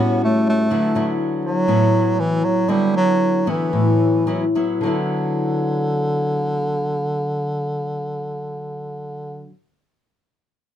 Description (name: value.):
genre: bossa nova.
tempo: 105-124 BPM.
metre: 4/4.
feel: straight.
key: D major.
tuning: A4 = 440 Hz.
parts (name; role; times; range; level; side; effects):
bright bass clarinet; melody; 0.0-9.5 s; D3 to B3; -20 LUFS; right 1 dB; none.
nylon-string guitar; accompaniment; 0.0-9.6 s; A2 to F#4; -21 LUFS; left 2 dB; none.
room: moderate small room reverb, RT60 0.5 s.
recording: close, detailed microphones.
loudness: -17 LUFS.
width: side -10 dB against mid.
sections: 0.0-4.8 A section; 4.8-9.4 B section.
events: slowing down 0.7-4.8.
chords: 0.0 A13; 0.7 D69.